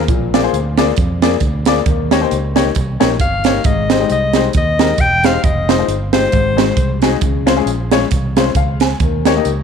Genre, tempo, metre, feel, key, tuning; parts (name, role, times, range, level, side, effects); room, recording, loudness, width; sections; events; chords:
uptempo gospel; 134 BPM; 4/4; swing 57% on 8ths; Ab major; A4 = 440 Hz
fingered electric bass; bass; 0.0-9.6 s; Fb1 to F2; -20 LUFS; equal
warm baby grand piano; accompaniment; 0.1-9.6 s; Ab2 to Ab5; -18 LUFS; left 14 dB
crisp fusion drum kit; drums; 0.1-9.6 s; hi-hat, kick drum, snare drum; -16 LUFS; right 5 dB
edgy alto saxophone; melody; 3.2-7.0 s; C5 to G5; -17 LUFS; left 2 dB
light reverb, small room ambience; 1960s-style stereo; -12 LUFS; side -6 dB against mid
0.0-9.6 A section
0.1 Bb7; 1.9 Eb7; 3.6 Abmaj7; 5.4 Fm7; 6.3 Ab7; 7.2 Dbmaj7; 9.0 Eb7